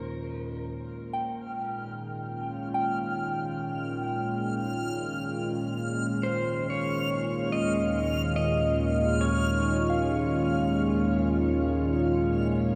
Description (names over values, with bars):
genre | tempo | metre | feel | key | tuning
ambient | 71 BPM | 4/4 | straight | Eb mixolydian | A4 = 439 Hz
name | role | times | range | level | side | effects
pedal steel guitar | melody | 0.0-0.3, 6.2-12.8 s | Bb4 to Eb5 | -35 LUFS | equal | shimmer reverb, diffuse ambient delay
warm analog pad | sustained chords | 0.0-12.8 s | Eb2 to F4 | -29 LUFS | equal | chorus, shimmer reverb
backwards swelling texture | texture | 1.4-12.8 s | F6 | -40 LUFS | equal | built-in reverb, shimmer reverb
soft synth bell | arpeggios | 1.1-12.8 s | F5 to G5 | -38 LUFS | equal | chorus, phaser, shimmer reverb, diffuse ambient delay
room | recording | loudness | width
wet huge ambient reverb, RT60 8.1 s | dark, warm production | -28 LUFS | mono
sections
0.0-12.8 A section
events
none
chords
0.0 Bbm/Eb; 0.7 Eb7sus4; 7.5 Bbm/Eb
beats
| 0.71 1.57 2.43 3.28 | 4.14 5.00 5.85 6.69 | 7.53 8.37 9.21 10.04 | 10.88 11.73 12.58